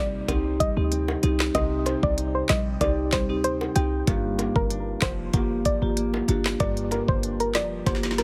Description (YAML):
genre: dancehall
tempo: 95 BPM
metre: 4/4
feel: straight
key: C minor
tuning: A4 = 442 Hz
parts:
  - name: soft round pluck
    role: melody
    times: 0.0-8.2 s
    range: Bb4 to G5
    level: -31 LUFS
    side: equal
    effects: chorus, delay
  - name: nylon-string guitar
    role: arpeggios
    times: 0.0-8.2 s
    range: G2 to Eb4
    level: -35 LUFS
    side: equal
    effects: none
  - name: short 808-style bass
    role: bass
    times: 0.0-8.2 s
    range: F1 to D2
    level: -30 LUFS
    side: equal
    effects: none
  - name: marimba with medium mallets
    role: accompaniment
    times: 0.3-8.1 s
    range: Bb3 to G4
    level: -31 LUFS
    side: equal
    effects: sidechain pumping
  - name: island pop drum kit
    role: drums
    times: 0.3-8.2 s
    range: handclaps, hi-hat, kick drum, snare drum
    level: -29 LUFS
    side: equal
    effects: none
  - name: bongos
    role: percussion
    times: 0.3-8.0 s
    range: none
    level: -38 LUFS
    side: equal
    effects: none
room: little or no reverb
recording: heavily compressed radio sound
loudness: -25 LUFS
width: mono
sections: 0.0-8.2 A section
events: drum fill 7.9-8.2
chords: 0.0 Cm; 4.1 Gm7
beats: 0.29 0.92 | 1.55 2.18 2.81 3.44 | 4.08 4.71 5.34 5.97 | 6.60 7.23 7.87